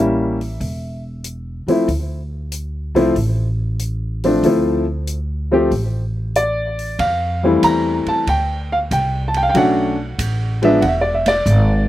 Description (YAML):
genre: jazz piano trio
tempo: 94 BPM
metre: 4/4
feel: swing 68% on 8ths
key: D minor, F major from 7.0 s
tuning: A4 = 440 Hz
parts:
  - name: warm baby grand piano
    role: melody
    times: 0.0-11.9 s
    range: E3 to Bb5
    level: -16 LUFS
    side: left 1 dB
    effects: none
  - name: upright bass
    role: bass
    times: 0.0-11.9 s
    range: E1 to F2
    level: -21 LUFS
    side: equal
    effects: none
  - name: open jazz drum kit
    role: drums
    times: 0.4-11.7 s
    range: hi-hat, kick drum, ride cymbal, snare drum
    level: -30 LUFS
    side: right 1 dB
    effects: none
room: little or no reverb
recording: recorded outdoors, with no room sound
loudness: -16 LUFS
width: side -14 dB against mid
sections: 0.0-7.0 A section; 7.0-11.9 B section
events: band accent 11.1-11.5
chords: 0.0 A5; 1.9 D5; 7.0 Fmaj9; 9.5 Bm9; 10.8 E7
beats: 0.60 1.24 | 1.88 2.52 3.16 3.79 | 4.43 5.07 5.71 6.35 | 6.99 7.63 8.27 8.91 | 9.54 10.19 10.82 11.46